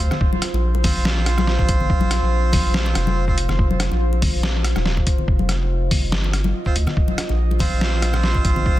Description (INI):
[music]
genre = deep dubstep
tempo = 142 BPM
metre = 4/4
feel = swing 54% on 16ths, half-time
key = unclear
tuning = A4 = 440 Hz
[part]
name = deep dark ambient pad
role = sustained chords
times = 0.0-8.8 s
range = F4 to Eb5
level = -29 LUFS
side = right 1 dB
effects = chorus, built-in reverb
[part]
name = saturated sub bass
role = bass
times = 0.0-8.8 s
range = Eb1 to D2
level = -20 LUFS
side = equal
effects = none
[part]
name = trip hop sampler-style drum kit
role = drums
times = 0.0-8.5 s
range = hi-hat, rim click, snare drum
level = -25 LUFS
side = equal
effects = none
[part]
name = congas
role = percussion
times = 0.1-8.8 s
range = none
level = -28 LUFS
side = left 4 dB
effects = none
[part]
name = electronic kick drum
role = drums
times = 0.2-8.8 s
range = none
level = -20 LUFS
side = equal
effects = none
[part]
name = melodica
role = stabs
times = 0.8-3.4, 6.7-8.8 s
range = C4 to C5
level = -27 LUFS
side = right 3 dB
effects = dub echo
[sound]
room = little or no reverb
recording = dense, heavily limited modern master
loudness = -17 LUFS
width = side -15 dB against mid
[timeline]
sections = 0.0-8.8 A section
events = none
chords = 0.0 F5